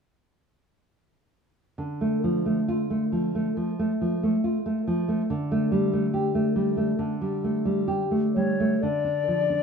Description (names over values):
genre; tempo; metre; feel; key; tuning
romantic duo for flute and classical guitar; 60-72 BPM; 4/4; rubato; D minor; A4 = 439 Hz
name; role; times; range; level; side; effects
nylon-string guitar; accompaniment; 1.8-9.6 s; D3 to G4; -23 LUFS; right 1 dB; none
silver concert flute; melody; 8.3-9.6 s; C#5 to D5; -25 LUFS; left 6 dB; none
room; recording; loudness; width
moderate large studio reverb, RT60 1.0 s; band playing live in one room; -23 LUFS; side -6 dB against mid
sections
1.8-8.8 A section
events
none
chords
1.8 Dm; 5.3 Dsus4; 8.8 Dm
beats
| 1.77 2.67 3.55 4.42 | 5.29 6.13 6.98 7.87 | 8.83